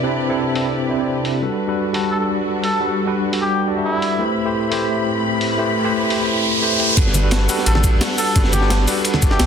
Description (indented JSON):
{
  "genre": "liquid drum and bass",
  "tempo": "173 BPM",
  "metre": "4/4",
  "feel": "straight",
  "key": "G major",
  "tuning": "A4 = 441 Hz",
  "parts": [
    { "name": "tine electric piano", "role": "accompaniment", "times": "0.0-9.5 s", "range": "C3 to E5", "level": "-20 LUFS", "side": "equal", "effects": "medium stereo tremolo, dub echo" },
    { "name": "dark studio string section", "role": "sustained chords", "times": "0.0-9.5 s", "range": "A2 to B5", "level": "-24 LUFS", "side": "left 2 dB", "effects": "vintage 12-bit sampler grit" },
    { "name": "breakbeat sampler-style drum kit", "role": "drums", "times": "0.6-9.5 s", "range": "cabasa, hi-hat, snare drum", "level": "-23 LUFS", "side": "left 1 dB", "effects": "low-pass filter on hats, low-pass filter on perc, low-pass filter on snare" },
    { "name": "trumpet with cup mute", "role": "melody", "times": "2.1-4.2, 7.7-9.5 s", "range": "E4 to A4", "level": "-25 LUFS", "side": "left 1 dB", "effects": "dub echo" },
    { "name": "riser", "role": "sound effects", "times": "5.2-7.0 s", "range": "none", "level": "-22 LUFS", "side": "right 1 dB", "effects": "none" },
    { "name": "sub bass with octave", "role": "bass", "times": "7.0-9.5 s", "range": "G1 to B1", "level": "-18 LUFS", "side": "equal", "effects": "tube saturation" },
    { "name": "crunchy breakbeat drum kit", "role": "drums", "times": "7.0-9.5 s", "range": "hi-hat, ride cymbal, snare drum", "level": "-26 LUFS", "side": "equal", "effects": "high-pass filter on cymbals, high-pass filter on hats, high-pass filter on snare, high-pass filter on room" },
    { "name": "electronic kick drum", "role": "drums", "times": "7.0-9.3 s", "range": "none", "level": "-17 LUFS", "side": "equal", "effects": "none" },
    { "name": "congas", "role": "percussion", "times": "7.1-9.2 s", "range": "none", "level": "-25 LUFS", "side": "right 3 dB", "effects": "none" }
  ],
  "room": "moderate digital room reverb, RT60 1.0 s, small room ambience",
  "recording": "dense, heavily limited modern master",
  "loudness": "-16 LUFS",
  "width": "side -7 dB against mid",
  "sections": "0.0-7.0 A section; 7.0-9.5 B section",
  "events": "riser 5.2-7.0; drop 7.0-9.5",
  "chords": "0.0 Cmaj7; 1.4 Gmaj9; 4.2 Am9; 7.0 Gmaj9"
}